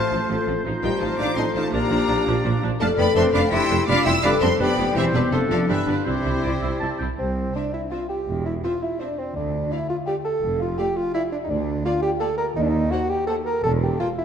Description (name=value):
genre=cinematic, playful, whimsical film cue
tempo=167 BPM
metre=3/4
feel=straight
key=C major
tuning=A4 = 441 Hz
part: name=buzzing marimba with soft mallets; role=melody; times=0.0-14.2 s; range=B3 to Bb5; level=-30 LUFS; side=left 5 dB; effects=none
part: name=clear studio violin section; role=melody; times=0.0-14.1 s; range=B4 to E6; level=-30 LUFS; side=left 1 dB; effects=none
part: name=bright clarinet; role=second line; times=0.0-7.0 s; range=C4 to F4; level=-32 LUFS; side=equal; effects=none
part: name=clear oboe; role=second line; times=0.0-7.1 s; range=A4 to A5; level=-32 LUFS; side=right 1 dB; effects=none
part: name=rich studio violin section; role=second line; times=0.0-14.1 s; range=D4 to G5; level=-32 LUFS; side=left 3 dB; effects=none
part: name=silver concert flute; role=second line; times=0.0-7.0 s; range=G4 to C6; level=-30 LUFS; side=left 3 dB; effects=none
part: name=warm bassoon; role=accompaniment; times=0.0-14.2 s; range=F3 to Bb4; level=-27 LUFS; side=right 1 dB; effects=none
part: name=mellow French horn section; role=sustained chords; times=0.0-14.2 s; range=C4 to C5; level=-28 LUFS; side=left 4 dB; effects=none
part: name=rich studio cello section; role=bass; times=0.0-13.9 s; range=C2 to E4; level=-29 LUFS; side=right 1 dB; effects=none
part: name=rich studio viola section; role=accompaniment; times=0.1-14.1 s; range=F3 to E4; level=-31 LUFS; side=right 2 dB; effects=none
part: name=mellow tuba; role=bass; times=0.1-13.9 s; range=E1 to Eb2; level=-30 LUFS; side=right 4 dB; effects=none
part: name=warm studio double bass section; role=bass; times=0.1-13.9 s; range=E1 to Eb2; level=-29 LUFS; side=right 3 dB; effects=none
room=wet scoring stage reverb, RT60 2.0 s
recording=dark, warm production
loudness=-20 LUFS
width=side -8 dB against mid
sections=0.0-7.2 A section; 7.2-14.2 B section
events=none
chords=0.0 F/A; 0.7 F7/A; 1.7 Bb; 2.8 Dm/F; 5.0 C/E; 5.3 Dm7; 5.7 G; 6.1 C; 8.3 C/E; 9.4 Dm; 10.4 Dm/F; 11.5 Bb/D; 12.6 Cm7b5/Eb (rootless); 13.6 C7/E (rootless)